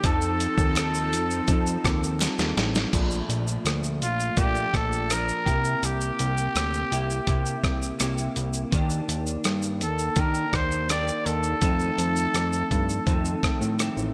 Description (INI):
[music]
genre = indie pop, bedroom pop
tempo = 83 BPM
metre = 4/4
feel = straight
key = Bb major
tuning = A4 = 440 Hz
[part]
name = growling trumpet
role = melody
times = 0.0-13.8 s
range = F4 to D5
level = -31 LUFS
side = equal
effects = lush chorus, digital delay
[part]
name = electric guitar through a small old amp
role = accompaniment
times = 0.0-14.1 s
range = F2 to A4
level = -32 LUFS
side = equal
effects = ensemble chorus, vibrato effect
[part]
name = phased analog pad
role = sustained chords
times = 0.0-2.9 s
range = F3 to A4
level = -38 LUFS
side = equal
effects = none
[part]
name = fat analog bass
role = bass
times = 0.0-14.1 s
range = A1 to Eb3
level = -30 LUFS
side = equal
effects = none
[part]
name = dusty soul sampler-style drum kit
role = drums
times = 0.0-14.1 s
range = crash cymbal, hi-hat, kick drum, rim click, shaker, snare drum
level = -29 LUFS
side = equal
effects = gated reverb
[part]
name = group handclap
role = percussion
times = 0.8-2.4 s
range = none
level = barely audible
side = none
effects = none
[sound]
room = light reverb, digital ambience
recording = bright 1980s-style digital production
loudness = -25 LUFS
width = mono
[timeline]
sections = 0.0-2.9 A section; 2.9-14.1 B section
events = drum fill 2.2-2.9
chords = 0.0 F7; 2.9 Bbmaj7; 5.5 C7; 8.7 Ebmaj7; 11.6 F7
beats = | 0.04 0.76 1.49 2.21 | 2.93 3.66 4.38 5.10 | 5.83 6.55 7.27 8.00 | 8.72 9.45 10.17 10.89 | 11.62 12.34 13.07 13.79